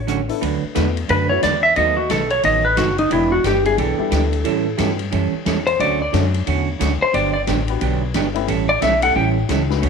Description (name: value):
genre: country, western swing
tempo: 178 BPM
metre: 4/4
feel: swing 62% on 8ths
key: D major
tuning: A4 = 440 Hz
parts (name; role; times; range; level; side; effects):
- clean lap steel guitar; melody; 0.0-9.3 s; D#4 to G5; -18 LUFS; equal; none
- upright bass; bass; 0.0-9.9 s; E1 to A2; -22 LUFS; left 2 dB; none
- vintage hollow-body jazz guitar; accompaniment; 0.1-9.9 s; D3 to B4; -22 LUFS; right 10 dB; none
- swinging big-band drum kit; drums; 0.1-9.9 s; hi-hat, ride cymbal, rim click, snare drum; -28 LUFS; left 10 dB; none
- warm upright piano; accompaniment; 0.3-9.8 s; F#3 to B4; -27 LUFS; left 14 dB; none
room: moderate plate reverb, RT60 1.6 s, studio reverb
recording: 1960s-style stereo with parts hard left and right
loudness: -16 LUFS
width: side -5 dB against mid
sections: 0.4-9.9 A section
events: electric slide guitar solo 0.4-9.9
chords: 0.4 D69; 1.8 B7; 3.1 Em7; 4.4 A13; 5.8 Dmaj7; 7.1 Gmaj7; 8.5 A7